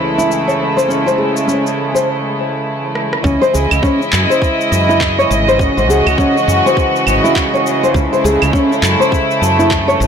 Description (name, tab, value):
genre	organic downtempo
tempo	102 BPM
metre	4/4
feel	swing 59% on 16ths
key	C# harmonic minor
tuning	A4 = 440 Hz
part	warm studio string section	sustained chords	0.0-10.1 s	C#3 to D#5	-15 LUFS	right 1 dB	sidechain pumping
part	nylon-string guitar	arpeggios	0.0-10.0 s	C#4 to C#5	-16 LUFS	left 1 dB	ping-pong delay
part	woody fretless electric bass	bass	0.0-10.1 s	G#1 to F#2	-17 LUFS	equal	ensemble chorus, sidechain pumping
part	electronic cabasa, rim click, claves and handclaps	drums	0.2-10.1 s	none	-20 LUFS	right 1 dB	none
part	electronic kick drum	drums	3.2-9.9 s	none	-18 LUFS	equal	none
room	moderate lush hall reverb, RT60 1.6 s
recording	blown-out, overdriven recording, overdrive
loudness	-11 LUFS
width	side -7 dB against mid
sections	0.0-3.2 A section; 3.2-10.1 B section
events	filter sweep on drum 0.0-3.2; filter sweep on nylon-string guitar 0.0-3.2; break 2.1-3.2; drum fill 3.0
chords	0.0 Amaj7/C#; 3.2 C#madd9; 8.0 Amaj7